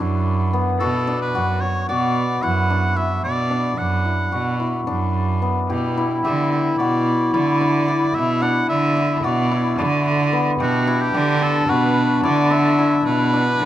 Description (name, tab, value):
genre	contemporary instrumental, chamber music in an uneven meter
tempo	220 BPM (eighths)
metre	9/8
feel	straight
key	unclear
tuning	A4 = 439 Hz
part	hammered dulcimer	arpeggios	0.0-13.7 s	B3 to G4	-23 LUFS	left 3 dB	none
part	clear cello	bass	0.0-13.7 s	F#2 to D3	-20 LUFS	right 3 dB	none
part	bright oboe	melody	0.8-13.7 s	F#4 to F#5	-23 LUFS	equal	none
part	mellow clarinet	second line	5.7-13.7 s	D4 to E4	-22 LUFS	left 2 dB	none
room	light reverb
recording	close, detailed microphones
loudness	-17 LUFS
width	side -12 dB against mid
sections	0.0-13.7 A section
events	none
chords	0.0 Bm; 5.7 G6/B